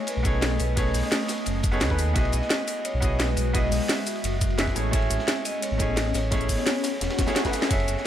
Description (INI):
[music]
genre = liquid drum and bass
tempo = 173 BPM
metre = 4/4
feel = straight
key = unclear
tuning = A4 = 438 Hz
[part]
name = vibraphone with medium hard mallets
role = melody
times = 0.0-8.1 s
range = A4 to E5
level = -33 LUFS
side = right 1 dB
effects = ping-pong delay
[part]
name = clear baby grand piano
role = accompaniment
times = 0.0-8.1 s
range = A3 to E5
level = -30 LUFS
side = right 2 dB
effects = digital delay
[part]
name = glassy FM pad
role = sustained chords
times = 0.0-8.1 s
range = G#3 to D#6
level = -32 LUFS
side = left 3 dB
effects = ensemble chorus, built-in reverb, phaser, sidechain pumping
[part]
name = crunchy breakbeat drum kit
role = drums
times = 0.1-8.1 s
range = hi-hat, ride cymbal, snare drum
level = -35 LUFS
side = equal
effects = high-pass filter on cymbals, high-pass filter on hats, high-pass filter on snare, high-pass filter on room
[part]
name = drum and bass drum kit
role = drums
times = 0.1-8.0 s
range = hi-hat, ride cymbal, rim click, shaker, snare drum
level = -28 LUFS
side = equal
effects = none
[part]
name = sub bass with octave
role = bass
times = 0.2-8.0 s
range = E1 to D#2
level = -27 LUFS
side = equal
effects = none
[part]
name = electronic kick drum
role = drums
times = 0.3-7.8 s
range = none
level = -26 LUFS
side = equal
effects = none
[part]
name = swell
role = sound effects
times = 7.1-7.7 s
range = none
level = -34 LUFS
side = left 3 dB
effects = none
[sound]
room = small room ambience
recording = none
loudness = -22 LUFS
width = side -11 dB against mid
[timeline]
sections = 0.0-8.1 A section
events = swell 7.1-7.7; drum fill 7.4-7.7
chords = 0.0 B13; 2.2 Emaj9/B; 4.8 Amaj7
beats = 0.08 0.42 | 0.77 1.12 1.46 1.81 | 2.16 2.50 2.85 3.20 | 3.54 3.89 4.24 4.59 | 4.93 5.28 5.63 5.97 | 6.32 6.67 7.01 7.36 | 7.71 8.05